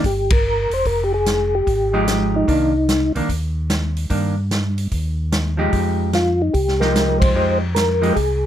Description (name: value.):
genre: soul jazz organ trio.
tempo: 148 BPM.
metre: 4/4.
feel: swing 66% on 8ths.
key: C minor.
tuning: A4 = 442 Hz.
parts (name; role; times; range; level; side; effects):
percussive tonewheel organ; melody; 0.0-3.1, 6.1-8.5 s; Eb4 to C5; -19 LUFS; left 1 dB; slow rotary speaker, chorus vibrato.
vintage hollow-body jazz guitar; accompaniment; 0.0-8.2 s; Eb3 to G4; -20 LUFS; right 1 dB; none.
mellow tonewheel organ; bass; 0.0-8.5 s; E1 to G2; -22 LUFS; equal; chorus vibrato, slow rotary speaker.
vintage drum kit; drums; 0.0-8.3 s; hi-hat, kick drum, ride cymbal, snare drum; -22 LUFS; equal; none.
room: little or no reverb.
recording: close, detailed microphones.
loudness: -16 LUFS.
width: side -10 dB against mid.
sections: 0.0-8.5 A section.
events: band accent 0.2, 7.2.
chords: 0.0 C7(no3) (rootless); 0.9 Fm9; 2.5 Cm9; 5.7 Fm9.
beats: 0.04 0.45 | 0.85 1.26 1.66 2.07 | 2.48 2.88 3.29 3.70 | 4.10 4.51 4.92 5.32 | 5.73 6.14 6.54 6.95 | 7.35 7.76 8.16.